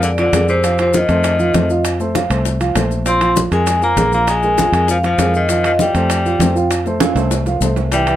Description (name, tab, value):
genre	Afro-Cuban jazz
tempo	198 BPM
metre	4/4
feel	straight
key	unclear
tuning	A4 = 441 Hz
part	vibraphone with medium hard mallets	melody	0.0-8.2 s	C5 to C6	-17 LUFS	left 1 dB	none
part	bright tenor saxophone	second line	0.0-8.2 s	C3 to C4	-22 LUFS	left 3 dB	none
part	dark baby grand piano	accompaniment	0.0-8.2 s	E3 to F5	-19 LUFS	right 2 dB	none
part	fingered electric bass	bass	0.0-8.2 s	Bb1 to F2	-19 LUFS	equal	none
part	bongos	percussion	0.0-8.1 s	none	-25 LUFS	left 8 dB	none
part	congas	percussion	0.0-8.2 s	none	-24 LUFS	equal	none
part	maracas	percussion	0.0-8.2 s	none	-29 LUFS	left 7 dB	none
part	timbales	percussion	0.2-8.2 s	none	-24 LUFS	right 6 dB	none
room	light reverb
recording	none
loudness	-13 LUFS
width	side -12 dB against mid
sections	0.0-8.2 A section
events	drum fill 7.0-7.9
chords	0.0 Bb7; 0.6 F7; 3.1 Bbsus2; 5.5 Fadd9